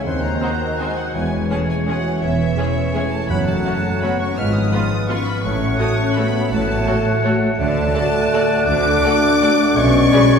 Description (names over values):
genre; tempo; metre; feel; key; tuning
classical, orchestral ballroom waltz; 167 BPM; 3/4; uneven beats, rubato; unclear; A4 = 440 Hz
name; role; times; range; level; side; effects
clear studio violin section; melody; 0.0-10.4 s; E5 to F6; -26 LUFS; left 2 dB; none
bright clarinet; second line; 0.0-10.4 s; Cb5 to D5; -26 LUFS; left 1 dB; none
mellow small flute group; second line; 0.0-10.4 s; F6 to G#6; -27 LUFS; right 1 dB; none
warm bassoon; accompaniment; 0.0-10.4 s; Eb3 to A3; -25 LUFS; right 3 dB; none
dark French horn section; sustained chords; 0.0-10.4 s; E3 to F4; -22 LUFS; left 3 dB; none
concert harp; arpeggios; 0.0-10.4 s; F#2 to A5; -24 LUFS; left 2 dB; none
clear chamber double bass section; bass; 0.1-10.1 s; E1 to Eb2; -24 LUFS; right 2 dB; none
warm studio cello section; bass; 0.1-10.1 s; Eb2 to D3; -25 LUFS; right 2 dB; none
warm studio violin section; second line; 0.4-10.2 s; F4 to D5; -28 LUFS; left 1 dB; none
rich chamber viola section; accompaniment; 0.4-10.2 s; G#3 to G#4; -27 LUFS; equal; none
timpani; percussion; 3.3-3.8 s; F#2; -29 LUFS; right 1 dB; none
room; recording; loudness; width
wet concert hall reverb, RT60 1.9 s; heard from further back in the room; -15 LUFS; side -6 dB against mid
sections
0.0-10.4 A section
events
none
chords
0.1 Cdim/Eb; 1.1 C#m/E; 3.3 F#m; 4.4 Fdim/Ab; 5.4 F#m/A; 7.6 D; 9.8 G#dim/B